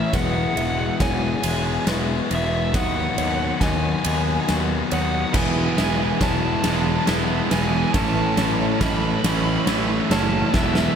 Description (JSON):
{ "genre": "post-rock", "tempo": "46 BPM (dotted quarters)", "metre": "6/8", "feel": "straight", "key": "E major", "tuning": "A4 = 440 Hz", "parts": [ { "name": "nasal lead guitar with a parked wah", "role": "melody", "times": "0.0-11.0 s", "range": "E5 to B5", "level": "-27 LUFS", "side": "equal", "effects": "overdrive, analog delay" }, { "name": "pedal steel guitar", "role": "sustained chords", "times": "0.0-11.0 s", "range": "G#3 to E5", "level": "-37 LUFS", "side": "right 1 dB", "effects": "none" }, { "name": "felt-muted upright piano", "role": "arpeggios", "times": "0.0-11.0 s", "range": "B4 to E5", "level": "-35 LUFS", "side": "right 5 dB", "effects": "analog delay" }, { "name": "twangy electric guitar", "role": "arpeggios", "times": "0.0-11.0 s", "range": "E2 to F#4", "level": "-33 LUFS", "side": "right 1 dB", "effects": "wide subtle chorus, analog delay" }, { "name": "sludgy distorted guitar", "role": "riff", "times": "0.0-11.0 s", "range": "A2 to F#4", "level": "-25 LUFS", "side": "left 8 dB", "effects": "overdrive" }, { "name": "fuzz picked electric bass", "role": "bass", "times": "0.1-10.9 s", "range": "E1 to D#2", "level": "-25 LUFS", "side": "equal", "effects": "overdrive" }, { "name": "huge arena drum kit", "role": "drums", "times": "0.1-11.0 s", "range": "crash cymbal, kick drum, ride cymbal, snare drum", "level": "-25 LUFS", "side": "right 1 dB", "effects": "none" }, { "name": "cranked stack guitar", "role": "riff", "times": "5.3-11.0 s", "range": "A2 to E4", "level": "-25 LUFS", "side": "right 10 dB", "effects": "overdrive" } ], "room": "moderate lush hall reverb, RT60 2.8 s", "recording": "dreamy mix soaked in reverb", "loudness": "-19 LUFS", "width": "side -7 dB against mid", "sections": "0.0-11.0 A section", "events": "build-up 0.0-11.0; drum fill 0.0-11.0", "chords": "0.1 Eadd9; 2.7 B/D#; 5.4 Eadd9; 8.0 A", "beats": "| 0.14 1.45 | 2.75 4.05 | 5.35 6.65 | 7.95 9.25 | 10.55" }